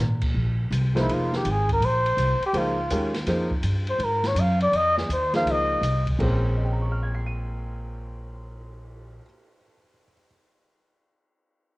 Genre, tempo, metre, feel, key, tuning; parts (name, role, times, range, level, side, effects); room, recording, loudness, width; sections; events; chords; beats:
modal jazz; 164 BPM; 4/4; swing 66% on 8ths; Bb dorian; A4 = 436 Hz
upright bass; bass; 0.0-9.2 s; F1 to Bb2; -26 LUFS; equal
open jazz drum kit; drums; 0.2-9.0 s; crash cymbal, cymbal swell, hi-hat, kick drum, ride cymbal, snare drum; -32 LUFS; equal; cassette tape
clear baby grand piano; accompaniment; 0.9-10.3 s; Bb2 to Eb7; -29 LUFS; equal; cassette tape
dark trumpet; melody; 1.0-6.1 s; E4 to F5; -24 LUFS; equal; cassette tape
light reverb, studio reverb; home recording on cassette; -21 LUFS; side -20 dB against mid
0.4-6.2 A section; 6.2-9.1 B section
trumpet solo 0.4-6.2
0.4 Bbm9
| 0.35 0.72 1.08 1.45 | 1.81 2.18 2.54 2.91 | 3.27 3.64 4.00 4.37 | 4.73 5.10 5.46 5.83 | 6.19 6.56 6.92 7.29 | 7.65 8.02 8.38 8.75